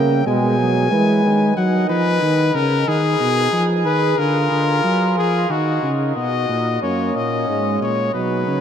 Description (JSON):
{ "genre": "classical, imitative canzona for brass ensemble", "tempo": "91 BPM", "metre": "4/4", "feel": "straight", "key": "G# minor", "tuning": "A4 = 440 Hz", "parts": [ { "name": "bright trumpet", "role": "melody", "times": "0.0-8.6 s", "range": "F#4 to G#5", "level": "-20 LUFS", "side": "left 4 dB", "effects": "none" }, { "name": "mellow flugelhorn", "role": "second line", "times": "0.0-8.6 s", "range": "C#4 to B4", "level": "-23 LUFS", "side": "right 4 dB", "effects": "none" }, { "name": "warm trombone", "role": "accompaniment", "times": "0.0-1.6, 6.8-8.6 s", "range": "D#3 to A#3", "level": "-25 LUFS", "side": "right 2 dB", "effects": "none" }, { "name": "warm tuba", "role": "bass", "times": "0.0-8.6 s", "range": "F#2 to G#3", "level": "-20 LUFS", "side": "equal", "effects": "none" } ], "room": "wet huge ambient reverb, RT60 8.9 s", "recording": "in a vast, echoing space", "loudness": "-16 LUFS", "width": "side -8 dB against mid", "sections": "0.0-6.8 A section; 6.8-8.6 B section", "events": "none", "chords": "0.3 G#m/B; 1.6 D#m; 2.9 G#m; 4.2 A#/D; 5.5 D#m; 6.8 F#" }